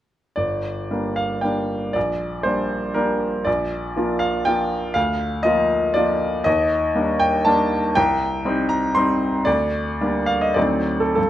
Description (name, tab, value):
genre	classical, romantic character piece for solo piano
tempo	94-125 BPM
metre	3/4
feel	rubato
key	G minor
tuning	A4 = 444 Hz
part	bright baby grand piano	solo	0.4-11.3 s	G1 to C6	-18 LUFS	equal	none
room	moderate recital hall reverb, RT60 1.4 s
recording	close, detailed microphones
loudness	-18 LUFS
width	side -12 dB against mid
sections	0.4-11.3 A section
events	none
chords	0.4 Gm; 2.0 Gm/Bb; 3.5 Bb; 5.0 Bb/D; 6.5 Ebmaj7; 8.0 Cm; 9.5 Gm/D; 10.6 D7b9